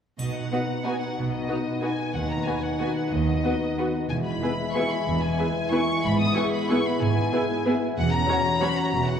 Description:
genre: classical, orchestral ballroom waltz.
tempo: 185 BPM.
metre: 3/4.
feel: uneven beats, rubato.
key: B major.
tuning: A4 = 441 Hz.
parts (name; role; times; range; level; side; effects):
rich studio violin section; melody; 0.2-9.2 s; D#5 to D#6; -30 LUFS; left 2 dB; none.
warm French horn section; sustained chords; 0.2-9.2 s; G#3 to F#4; -30 LUFS; left 2 dB; none.
concert harp; arpeggios; 0.2-9.2 s; G#2 to G#5; -30 LUFS; left 3 dB; none.
warm studio cello section; bass; 0.2-9.2 s; D#2 to B2; -30 LUFS; right 3 dB; none.
warm studio double bass section; bass; 0.2-9.2 s; E1 to D#2; -32 LUFS; right 5 dB; none.
triangle; percussion; 0.2-0.8 s; none; -45 LUFS; equal; none.
dark studio violin section; second line; 0.5-8.7 s; F#4 to C#5; -32 LUFS; left 1 dB; none.
dark studio viola section; accompaniment; 0.5-8.7 s; F#3 to F#4; -30 LUFS; right 2 dB; none.
room: wet concert hall reverb, RT60 1.8 s.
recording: recorded in a church or concert hall, lossy compression artefacts.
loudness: -22 LUFS.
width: side -8 dB against mid.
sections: 0.2-9.2 A section.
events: none.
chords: 0.2 B; 2.1 B/D#; 4.1 E; 6.0 E/G#; 8.0 F#7/E.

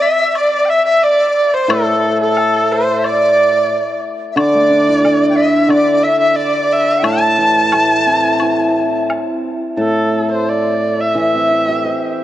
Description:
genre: chinese traditional, Chinese chamber ensemble.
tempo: 89 BPM.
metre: 4/4.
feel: rubato.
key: A yu mode.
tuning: A4 = 440 Hz.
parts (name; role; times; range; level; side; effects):
dark erhu; melody; 0.0-12.2 s; A4 to A5; -15 LUFS; right 2 dB; tape echo.
bright reedy dizi; second line; 0.0-9.1 s; A4 to A5; -17 LUFS; left 3 dB; tape echo.
woodblock; percussion; 0.4-9.3 s; none; -21 LUFS; left 4 dB; none.
hammered dulcimer; accompaniment; 1.7-12.2 s; A2 to C5; -16 LUFS; equal; tape echo.
room: light reverb, studio ambience.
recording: echo-heavy mix, cassette tape.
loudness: -12 LUFS.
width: side -13 dB against mid.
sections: 0.0-9.8 A section; 9.8-12.2 B section.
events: none.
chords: none.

